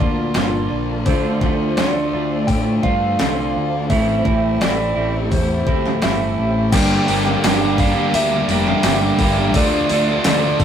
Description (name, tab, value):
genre	rock, shoegaze and dream pop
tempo	85 BPM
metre	4/4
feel	straight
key	D minor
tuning	A4 = 443 Hz
part	soft struck synth lead	melody	0.0-10.6 s	C5 to G5	-23 LUFS	equal	chorus
part	ethereal airy pad	sustained chords	0.0-10.6 s	F4 to Bb5	-30 LUFS	right 1 dB	ensemble chorus, built-in reverb, tremolo
part	overdriven electric guitar	riff	0.0-10.6 s	G2 to G4	-21 LUFS	right 4 dB	none
part	thick fuzz guitar	riff	0.0-10.6 s	G2 to D4	-25 LUFS	left 5 dB	distortion
part	growling fingered electric bass	bass	0.0-10.6 s	F1 to A2	-24 LUFS	left 1 dB	overdrive
part	crisp 8-bit digital drum machine	drums	0.3-10.6 s	crash cymbal, hi-hat, kick drum, snare drum	-20 LUFS	left 1 dB	none
part	overdriven electric guitar	riff	6.7-10.6 s	G2 to D4	-22 LUFS	equal	none
room	moderate stone room reverb, RT60 0.9 s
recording	rough rehearsal-room recording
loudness	-15 LUFS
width	side -8 dB against mid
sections	0.0-6.7 A section; 6.7-10.6 B section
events	none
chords	0.0 Bbmaj7; 1.1 Dm7; 3.9 Am7; 6.7 Gm; 9.6 Dmadd9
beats	0.36 | 1.07 1.78 2.49 3.20 | 3.90 4.61 5.32 6.03 | 6.73 7.44 8.14 8.85 | 9.55 10.25